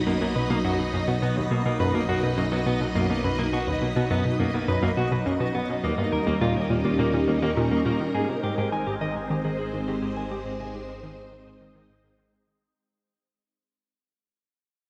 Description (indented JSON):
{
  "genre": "ambient, sequencer-driven space music",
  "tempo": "104 BPM",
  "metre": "4/4",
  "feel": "straight",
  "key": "B major, Ab major from 8.1 s",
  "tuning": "A4 = 439 Hz",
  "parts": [
    { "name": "phased string machine", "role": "sustained chords", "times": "0.0-12.8 s", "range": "F#3 to B5", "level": "-31 LUFS", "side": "equal", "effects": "ensemble chorus, phaser" },
    { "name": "fat analog bass", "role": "bass", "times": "0.0-12.7 s", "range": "Ab1 to D#2", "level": "-37 LUFS", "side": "equal", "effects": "none" },
    { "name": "pulsing gated texture", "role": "texture", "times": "0.1-12.8 s", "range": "D#5", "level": "-39 LUFS", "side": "equal", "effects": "chorus, built-in reverb" },
    { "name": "clean electric guitar", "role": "arpeggios", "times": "0.1-10.4 s", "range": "A#2 to Ab5", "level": "-31 LUFS", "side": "equal", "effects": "delay" },
    { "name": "analog pluck", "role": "riff", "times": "0.1-12.7 s", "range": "D#2 to Ab3", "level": "-30 LUFS", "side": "equal", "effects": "chorus, delay" }
  ],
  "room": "wet lush hall reverb, RT60 2.8 s",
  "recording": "dreamy mix soaked in reverb",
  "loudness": "-25 LUFS",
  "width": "mono",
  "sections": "0.0-8.1 A section; 8.1-12.8 B section",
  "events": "fade-out on synth arpeggio sound 8.1-12.8; fade-out 8.1-12.8",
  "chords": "0.0 B; 5.8 D#7; 8.1 Ab"
}